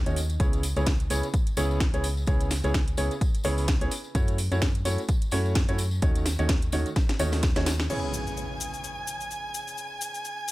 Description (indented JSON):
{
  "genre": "piano house",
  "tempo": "128 BPM",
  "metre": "4/4",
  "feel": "swing 56% on 16ths",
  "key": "C# minor",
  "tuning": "A4 = 441 Hz",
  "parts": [
    { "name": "organ-like FM bass", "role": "bass", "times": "0.0-7.9 s", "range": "C#2 to F#2", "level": "-28 LUFS", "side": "equal", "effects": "sidechain pumping" },
    { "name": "clear concert grand piano", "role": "riff", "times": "0.1-10.5 s", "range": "C#3 to C#5", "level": "-31 LUFS", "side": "right 1 dB", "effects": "sidechain pumping, tape echo" },
    { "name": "house drum kit", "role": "drums", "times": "0.1-10.5 s", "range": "crash cymbal, hi-hat, shaker, snare drum", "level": "-32 LUFS", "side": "equal", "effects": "studio ambience" },
    { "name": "tambourine", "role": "percussion", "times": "0.1-7.9 s", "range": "none", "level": "-41 LUFS", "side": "left 3 dB", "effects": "none" },
    { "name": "electronic kick drum", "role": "drums", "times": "0.4-7.5 s", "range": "none", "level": "-25 LUFS", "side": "equal", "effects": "studio ambience" },
    { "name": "clear studio violin section", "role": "sustained chords", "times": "7.9-10.5 s", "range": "G#5 to G#6", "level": "-34 LUFS", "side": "right 1 dB", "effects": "sidechain pumping" },
    { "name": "impact", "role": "sound effects", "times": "7.9-9.8 s", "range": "none", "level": "-37 LUFS", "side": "equal", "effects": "none" }
  ],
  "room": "little or no reverb",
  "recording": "none",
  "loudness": "-24 LUFS",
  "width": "side -18 dB against mid",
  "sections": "0.0-7.9 A section; 7.9-10.5 B section",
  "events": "drum fill 7.0-7.9; impact 7.9-9.8",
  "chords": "0.4 C#m7; 3.9 F#m7; 6.0 D#m7b5; 7.9 C#m7"
}